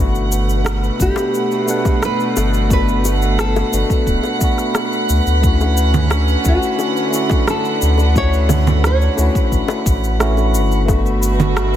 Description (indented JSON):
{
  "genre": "sunset chillout",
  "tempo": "88 BPM",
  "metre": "4/4",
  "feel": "straight",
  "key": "D major",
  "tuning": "A4 = 440 Hz",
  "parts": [
    { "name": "tine electric piano", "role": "accompaniment", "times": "0.0-11.8 s", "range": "A3 to F#5", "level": "-22 LUFS", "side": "moving between left 4 dB and right 4 dB", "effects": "auto-pan, low-pass filter, digital delay" },
    { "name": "rich chamber string section", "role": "sustained chords", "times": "0.0-11.8 s", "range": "B2 to F#5", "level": "-22 LUFS", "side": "right 2 dB", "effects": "none" },
    { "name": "warm sub bass", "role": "bass", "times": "0.0-11.8 s", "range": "D1 to D2", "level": "-16 LUFS", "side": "equal", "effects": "none" },
    { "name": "wind-like tuned noise texture", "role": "texture", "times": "0.0-11.8 s", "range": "B4 to B5", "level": "-28 LUFS", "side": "left 3 dB", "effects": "built-in reverb" },
    { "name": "electronic shaker, rim click and congas", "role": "drums", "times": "0.2-11.8 s", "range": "none", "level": "-22 LUFS", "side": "right 3 dB", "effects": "none" },
    { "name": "bongos", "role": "percussion", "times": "0.6-11.7 s", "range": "none", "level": "-27 LUFS", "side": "left 7 dB", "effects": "none" },
    { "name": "nylon-string guitar", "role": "melody", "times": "1.0-10.5 s", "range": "F#4 to C#5", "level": "-22 LUFS", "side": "equal", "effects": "digital delay" },
    { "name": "electronic kick drum", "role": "drums", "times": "1.0-11.0 s", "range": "none", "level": "-17 LUFS", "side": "equal", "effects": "none" }
  ],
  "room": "light reverb, small room reverb",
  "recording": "none",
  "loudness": "-14 LUFS",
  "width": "side -11 dB against mid",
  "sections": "0.0-11.8 A section",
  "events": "filter sweep on tine electric piano 0.0-11.8",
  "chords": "0.0 Gmaj9; 5.4 Dmaj7; 10.9 Gmaj9",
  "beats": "0.66 1.35 2.03 | 2.71 3.39 4.07 4.75 | 5.44 6.12 6.80 7.48 | 8.16 8.85 9.53 10.21 | 10.89 11.57"
}